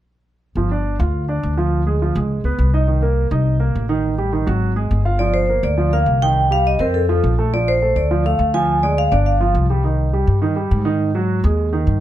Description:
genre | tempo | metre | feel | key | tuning
Afro-Cuban jazz | 207 BPM | 4/4 | straight | G minor | A4 = 440 Hz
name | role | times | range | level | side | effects
warm concert grand piano | accompaniment | 0.6-12.0 s | Eb3 to F5 | -22 LUFS | right 3 dB | none
upright bass | bass | 0.6-12.0 s | G1 to Ab2 | -18 LUFS | equal | none
vibraphone with medium mallets | melody | 5.2-9.5 s | A4 to Ab5 | -18 LUFS | equal | plate reverb
room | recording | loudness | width
light reverb | close, detailed microphones | -15 LUFS | side -12 dB against mid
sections
0.6-5.2 A section; 5.2-12.0 B section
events
none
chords
0.6 G5; 1.7 Ddim; 2.3 C#sus2; 2.9 Cm7; 4.0 F#m69; 4.6 Fmadd9; 5.2 Gm7; 6.4 Cm; 6.9 F; 7.5 Bbmaj9; 8.7 Ddim; 9.3 G5; 9.8 Cm; 11.0 Ab5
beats
| 0.56 0.85 1.14 1.43 | 1.72 2.01 2.30 2.59 | 2.88 3.17 3.46 3.75 | 4.04 4.33 4.62 4.91 | 5.20 5.49 5.78 6.07 | 6.36 6.65 6.94 7.23 | 7.52 7.81 8.10 8.39 | 8.69 8.98 9.27 9.56 | 9.85 10.14 10.43 10.72 | 11.01 11.30 11.59 11.88

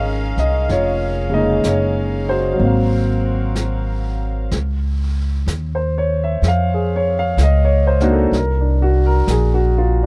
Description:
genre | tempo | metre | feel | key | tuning
jazz ballad | 63 BPM | 4/4 | swing 66% on 8ths | Db major | A4 = 441 Hz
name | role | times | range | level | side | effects
warm baby grand piano | accompaniment | 0.0-10.1 s | Db3 to F5 | -21 LUFS | equal | none
warm chamber string section | sustained chords | 0.0-4.5 s | C4 to F5 | -31 LUFS | equal | none
upright bass | bass | 0.0-10.1 s | F1 to F2 | -20 LUFS | equal | none
jazz brush drum kit | drums | 0.4-10.1 s | brushed snare drum, hi-hat, snare drum | -33 LUFS | equal | none
room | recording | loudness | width
little or no reverb | dry, close 1970s-style studio recording | -18 LUFS | mono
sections
0.0-4.5 A section; 4.5-10.1 B section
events
none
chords
0.0 Db6; 2.6 Ab13; 4.5 Db; 8.3 Bb9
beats
| 0.69 1.64 2.59 3.56 | 4.52 5.47 6.43 7.38 | 8.33 9.27

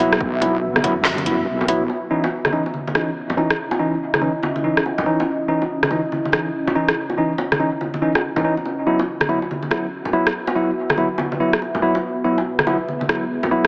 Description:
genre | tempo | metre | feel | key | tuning
deep dubstep | 142 BPM | 4/4 | swing 62% on 16ths, half-time | C# minor | A4 = 440 Hz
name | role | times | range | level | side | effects
deep dark ambient pad | sustained chords | 0.0-13.7 s | B3 to E5 | -29 LUFS | equal | chorus, built-in reverb
tine electric piano | stabs | 0.0-13.7 s | E3 to E4 | -24 LUFS | equal | dub echo
wobble bass | bass | 0.0-1.9 s | B1 to F#2 | -28 LUFS | equal | chorus
garage drum kit | drums | 0.1-13.7 s | handclaps, hi-hat, rim click, snare drum | -23 LUFS | equal | none
electronic kick drum | drums | 0.2-0.9 s | none | -31 LUFS | equal | none
congas and bongos | percussion | 0.4-13.5 s | none | -29 LUFS | equal | dub echo
room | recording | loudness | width
moderate echo chamber reverb, RT60 1.8 s | heavily compressed radio sound, multiband compression, AM radio sound | -20 LUFS | mono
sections
0.0-1.9 A section; 1.9-13.7 B section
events
none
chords
0.0 Bsus4; 1.9 C#madd9; 8.7 Bsus4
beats
| 0.20 0.63 1.05 1.47 | 1.90 2.32 2.74 3.16 | 3.59 4.01 4.43 4.85 | 5.28 5.70 6.12 6.54 | 6.97 7.39 7.81 8.23 | 8.66 9.08 9.50 9.92 | 10.35 10.77 11.19 11.61 | 12.04 12.46 12.88 13.30

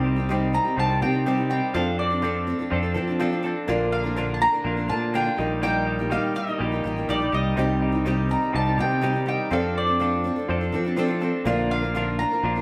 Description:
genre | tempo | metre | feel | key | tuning
folk rock and heartland rock | 123 BPM | 4/4 | straight | C dorian | A4 = 440 Hz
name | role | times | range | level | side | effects
mandolin | melody | 0.0-12.6 s | D5 to Bb5 | -28 LUFS | equal | none
dark baby grand piano | accompaniment | 0.0-12.6 s | C4 to G5 | -34 LUFS | equal | none
picked steel-string acoustic guitar | accompaniment | 0.0-12.6 s | Bb2 to Bb4 | -31 LUFS | equal | none
twelve-string electric guitar | riff | 0.0-12.6 s | Bb2 to A4 | -31 LUFS | equal | none
fingered electric bass | bass | 0.0-12.6 s | A1 to F3 | -29 LUFS | equal | none
room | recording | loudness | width
wet large studio reverb, RT60 0.9 s | band playing live in one room | -24 LUFS | mono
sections
0.0-12.6 A section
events
grand piano fill 3.0-3.7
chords
0.0 Cm; 1.7 F6; 3.7 Bb; 5.4 Eb/Bb; 7.6 Cm; 9.5 F6; 11.5 Bb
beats
0.29 0.78 1.26 | 1.75 2.23 2.72 3.20 | 3.69 4.17 4.66 5.14 | 5.63 6.11 6.60 7.09 | 7.57 8.06 8.55 9.03 | 9.52 10.01 10.49 10.98 | 11.47 11.95 12.44

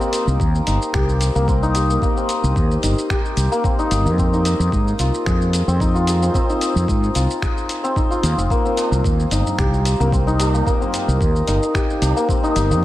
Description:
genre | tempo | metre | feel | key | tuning
organic downtempo | 111 BPM | 4/4 | swing 53% on 16ths | C minor | A4 = 440 Hz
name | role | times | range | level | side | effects
santur | arpeggios | 0.0-12.8 s | Bb3 to Ab4 | -20 LUFS | left 1 dB | tape echo, shimmer reverb
dusty soul sampler-style drum kit | drums | 0.0-12.8 s | finger snaps, hi-hat, shaker | -28 LUFS | equal | none
mellow fretless electric bass | bass | 0.3-12.8 s | F1 to Ab2 | -18 LUFS | equal | none
electronic kick drum | drums | 0.4-12.4 s | none | -21 LUFS | equal | none
tabla | percussion | 8.8-12.8 s | none | -31 LUFS | right 4 dB | none
room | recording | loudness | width
light reverb, digital ambience | none | -16 LUFS | side -15 dB against mid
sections
0.0-12.8 A section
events
none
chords
0.0 Cm7; 4.2 Fm7; 8.5 Cm7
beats
0.40 0.94 1.48 | 2.02 2.56 3.10 3.64 | 4.18 4.72 5.26 5.80 | 6.34 6.88 7.42 7.96 | 8.51 9.05 9.59 10.13 | 10.67 11.21 11.75 12.29 | 12.83

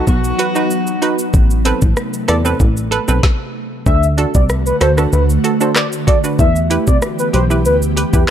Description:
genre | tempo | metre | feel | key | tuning
dancehall | 95 BPM | 4/4 | straight | unclear | A4 = 440 Hz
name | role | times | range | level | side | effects
warm horn section | second line | 0.0-1.3 s | F#4 | -24 LUFS | equal | tape echo
hollow square pluck | accompaniment | 0.0-8.3 s | C4 to D5 | -20 LUFS | right 4 dB | chorus
ethereal airy pad | sustained chords | 0.0-8.3 s | C3 to G4 | -21 LUFS | right 1 dB | ensemble chorus, built-in reverb, sidechain pumping
plucky analog bass | bass | 0.1-8.3 s | A1 to E2 | -16 LUFS | equal | none
island pop drum kit | drums | 0.1-8.3 s | handclaps, hi-hat, kick drum, rim click, shaker, snare drum | -15 LUFS | equal | none
warm velvety synth lead | melody | 3.9-8.2 s | G4 to E5 | -18 LUFS | left 1 dB | chorus
room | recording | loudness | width
light reverb | dark, warm production | -12 LUFS | side -10 dB against mid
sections
0.0-3.9 A section; 3.9-8.3 B section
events
stop 3.2-3.9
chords
0.0 B; 1.3 Amadd9; 3.9 D; 6.4 Em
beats
0.07 0.71 | 1.34 1.97 2.60 3.23 | 3.87 4.50 5.13 5.76 | 6.39 7.02 7.65 8.29

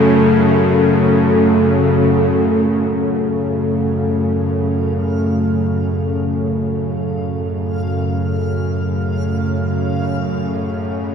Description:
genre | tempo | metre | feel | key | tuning
dark ambient drone | free time | none | none | F# harmonic minor | A4 = 440 Hz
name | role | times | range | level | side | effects
dark analog pad | sustained chords | 0.0-11.1 s | A3 to A4 | -17 LUFS | equal | chorus
bowed-like drone | drone | 0.0-11.1 s | F#2 to C#3 | -18 LUFS | equal | built-in reverb
backwards swelling texture | texture | 3.9-11.1 s | E#5 | -34 LUFS | left 1 dB | built-in reverb, lush chorus
room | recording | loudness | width
wet lush hall reverb, RT60 3.0 s | dreamy mix soaked in reverb | -15 LUFS | side -7 dB against mid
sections
0.0-2.7 A section; 2.7-11.1 B section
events
fade-in on synth texture 2.7-11.1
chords
0.0 F#m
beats
free time

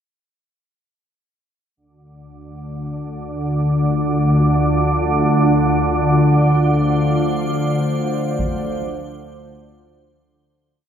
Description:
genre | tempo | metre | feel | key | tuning
dark ambient drone | free time | none | none | unclear | A4 = 441 Hz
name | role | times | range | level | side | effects
deep dark ambient pad | sustained chords | 3.7-10.6 s | A3 to F5 | -25 LUFS | left 1 dB | chorus, built-in reverb
organ-like drone | drone | 2.6-10.7 s | D2 to D3 | -16 LUFS | equal | ensemble chorus, built-in reverb
icy glass pad | texture | 6.4-10.7 s | C5 | -31 LUFS | right 4 dB | chorus, built-in reverb
taiko ensemble | percussion | 8.4-8.6 s | none | -27 LUFS | equal | low-pass filter on perc, analog delay
room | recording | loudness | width
moderate spring reverb, RT60 2.4 s | echo-heavy mix | -15 LUFS | side -8 dB against mid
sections
1.8-10.6 A section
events
fade-in on ambient pad 1.8-10.6; fade-in on drum 1.8-10.6; fade-out 6.2-10.6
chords
1.8 Dm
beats
free time

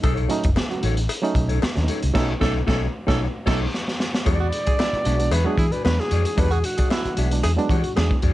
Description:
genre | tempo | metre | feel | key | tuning
funk | 113 BPM | 4/4 | straight | unclear | A4 = 441 Hz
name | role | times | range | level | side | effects
breathy tenor saxophone | second line | 0.0-8.2 s | E4 to A4 | -30 LUFS | right 5 dB | none
mellow electric guitar | accompaniment | 0.0-8.3 s | D#4 to E5 | -31 LUFS | left 7 dB | none
barky reed electric piano | stabs | 0.0-8.3 s | F#3 to F#4 | -26 LUFS | right 4 dB | overdrive
vintage muted fingered electric bass | bass | 0.0-8.3 s | F#1 to E3 | -22 LUFS | equal | none
crunchy breakbeat drum kit | drums | 0.0-8.3 s | crash cymbal, hi-hat, kick drum, snare drum | -23 LUFS | equal | none
cowbell | percussion | 0.0-8.1 s | none | -33 LUFS | left 7 dB | none
breathy alto saxophone | melody | 4.3-7.4 s | F#4 to D5 | -26 LUFS | equal | none
percussive tonewheel organ | sustained chords | 4.3-8.3 s | E3 to F#4 | -34 LUFS | right 1 dB | none
room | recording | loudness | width
little or no reverb | nothing above 10.7 kHz | -19 LUFS | side -16 dB against mid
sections
0.0-4.3 A section; 4.3-8.3 B section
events
band accent 2.2-4.3; drum fill 3.7-4.3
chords
0.0 B9; 4.3 E9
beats
| 0.04 0.56 1.09 1.62 | 2.15 2.68 3.21 3.74 | 4.27 4.79 5.32 5.85 | 6.38 6.91 7.44 7.97

